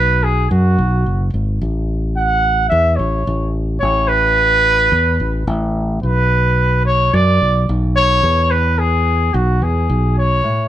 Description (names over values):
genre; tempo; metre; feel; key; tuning
indie folk with a building arrangement; 109 BPM; 4/4; straight; unclear; A4 = 440 Hz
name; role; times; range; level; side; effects
mellow trumpet; melody; 0.0-10.7 s; F#4 to F#5; -16 LUFS; right 1 dB; none
fingered electric bass; bass; 0.0-10.4 s; F#1 to F#2; -16 LUFS; equal; none
fingerpicked steel-string acoustic guitar; accompaniment; 10.4-10.7 s; A2; -19 LUFS; left 1 dB; none
room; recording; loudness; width
light reverb; band playing live in one room; -13 LUFS; side -12 dB against mid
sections
0.0-10.4 A section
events
none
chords
0.0 B5; 1.6 N.C.; 6.0 Bm; 8.2 E